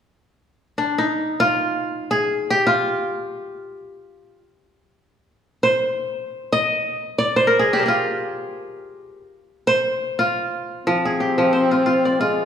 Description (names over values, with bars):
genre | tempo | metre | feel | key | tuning
west african traditional, West African string and xylophone music | free time | none | none | F dorian | A4 = 440 Hz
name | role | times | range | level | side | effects
kora | arpeggios | 0.8-12.4 s | F3 to Eb5 | -19 LUFS | equal | none
warm French horn | melody | 10.9-12.4 s | Ab3 to C4 | -19 LUFS | left 2 dB | none
room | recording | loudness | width
wet concert hall reverb, RT60 1.8 s | recorded in a church or concert hall, small room ambience | -18 LUFS | side -8 dB against mid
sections
0.2-10.9 A section; 10.9-12.4 B section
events
kora solo 0.2-10.9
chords
0.2 Fm